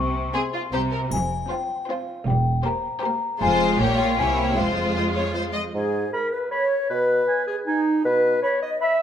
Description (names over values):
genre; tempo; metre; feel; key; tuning
cinematic, playful, whimsical film cue; 156 BPM; 3/4; straight; F minor, G# minor from 5.7 s; A4 = 438 Hz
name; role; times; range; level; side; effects
large celesta; melody; 0.0-5.3 s; F5 to Db6; -26 LUFS; left 5 dB; none
clear studio cello section; bass; 0.0-5.5 s; E2 to C3; -29 LUFS; right 2 dB; none
rich studio double bass section; bass; 0.0-4.9 s; E1 to C2; -27 LUFS; right 2 dB; none
rich studio violin section; melody; 0.3-5.6 s; Ab4 to Eb5; -29 LUFS; left 4 dB; none
rich studio violin section; second line; 0.3-5.6 s; E4 to Bb4; -28 LUFS; left 2 dB; none
warm studio viola section; accompaniment; 0.3-5.6 s; Ab3 to C4; -28 LUFS; right 2 dB; none
triangle; percussion; 1.1-1.8 s; none; -39 LUFS; left 2 dB; none
mellow clarinet; second line; 5.7-9.0 s; D#4 to E5; -23 LUFS; equal; none
mellow large flute ensemble; second line; 5.7-9.0 s; D#4 to E5; -26 LUFS; right 1 dB; none
warm bassoon; accompaniment; 5.7-8.4 s; G#2 to B2; -27 LUFS; right 2 dB; none
warm oboe; second line; 6.1-8.9 s; G#5 to B5; -29 LUFS; right 2 dB; none
room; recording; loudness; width
moderate recital hall reverb, RT60 1.7 s; none; -20 LUFS; side -9 dB against mid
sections
0.0-5.7 A section; 5.7-9.0 B section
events
none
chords
0.0 Fm/C (rootless); 1.1 Fm; 2.3 C7/E; 3.4 Fm; 3.8 Gdim/Bb; 4.2 C7b9; 4.6 Fm; 5.7 G#m; 6.9 G#m/B; 8.1 N.C.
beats
0.34 0.73 | 1.12 1.50 1.89 | 2.27 2.65 3.04 | 3.42 3.80 4.18 | 4.57 4.96 5.36 | 5.75 6.13 6.51 | 6.90 7.28 7.67 | 8.05 8.43 8.81